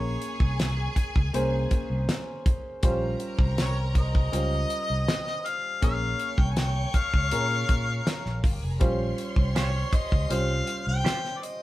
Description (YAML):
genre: lush 1970s-style soul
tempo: 80 BPM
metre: 4/4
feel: straight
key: Bb dorian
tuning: A4 = 440 Hz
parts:
  - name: warm harmonica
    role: melody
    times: 0.0-11.6 s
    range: Db5 to Ab5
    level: -30 LUFS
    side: left 2 dB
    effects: none
  - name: clear symphonic string section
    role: second line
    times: 0.0-11.4 s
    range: F4 to Db6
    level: -38 LUFS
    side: equal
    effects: none
  - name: warm baby grand piano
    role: accompaniment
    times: 0.0-11.6 s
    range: G3 to Db5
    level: -33 LUFS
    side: equal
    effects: none
  - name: fingered electric bass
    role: bass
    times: 0.0-11.0 s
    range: F1 to Bb2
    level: -28 LUFS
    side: equal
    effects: none
  - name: damped 70s drum kit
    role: drums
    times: 0.2-11.6 s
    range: hi-hat, kick drum, snare drum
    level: -25 LUFS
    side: equal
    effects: none
  - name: semi-hollow electric guitar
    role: riff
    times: 9.6-11.2 s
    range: Db4 to C5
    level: -35 LUFS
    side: right 6 dB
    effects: none
room: moderate stone room reverb, RT60 1.2 s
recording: band playing live in one room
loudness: -24 LUFS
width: side -16 dB against mid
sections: 0.0-11.6 A section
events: none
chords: 0.0 Bbm9; 2.8 Eb13/Bb; 5.8 Bbm9; 8.8 Bbm69 (rootless)